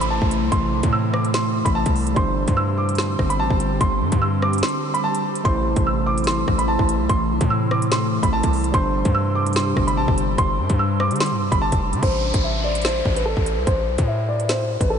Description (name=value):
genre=hip hop, drill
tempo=146 BPM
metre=4/4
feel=half-time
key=A minor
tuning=A4 = 440 Hz
part: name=dark baby grand piano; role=melody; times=0.0-15.0 s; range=A4 to E6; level=-23 LUFS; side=right 1 dB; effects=low-pass filter, analog delay
part: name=overdriven tine electric piano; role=accompaniment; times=0.0-12.0 s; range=G3 to C5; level=-28 LUFS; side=right 3 dB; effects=low-pass filter
part: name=glassy FM pad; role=sustained chords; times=0.0-12.0 s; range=C3 to G4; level=-26 LUFS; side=left 1 dB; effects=ensemble chorus, built-in reverb
part: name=distorted 808-style bass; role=bass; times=0.0-15.0 s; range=F1 to D3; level=-23 LUFS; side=equal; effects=distortion
part: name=drill drum kit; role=drums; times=0.0-14.9 s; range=hi-hat, kick drum, rim click, snare drum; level=-24 LUFS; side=equal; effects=none
part: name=downlifter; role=sound effects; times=0.0-2.2, 12.0-15.0 s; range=none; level=-32 LUFS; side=left 1 dB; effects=none
room=moderate huge ambient reverb, RT60 6.8 s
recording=dreamy mix soaked in reverb, nothing above 10.6 kHz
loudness=-18 LUFS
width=side -7 dB against mid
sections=0.0-12.0 A section; 12.0-15.0 B section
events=break 4.6-5.5; filter sweep 12.0-15.0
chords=0.0 Am; 2.2 Gsus4; 5.5 Am; 8.7 Gsus4; 12.0 Am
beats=0.11 | 0.52 0.93 1.34 1.75 | 2.16 2.57 2.98 3.40 | 3.81 4.22 4.63 5.04 | 5.45 5.86 6.27 6.68 | 7.09 7.51 7.92 8.33 | 8.74 9.15 9.56 9.97 | 10.38 10.79 11.21 11.62 | 12.03 12.44 12.85 13.26 | 13.67 14.08 14.49 14.90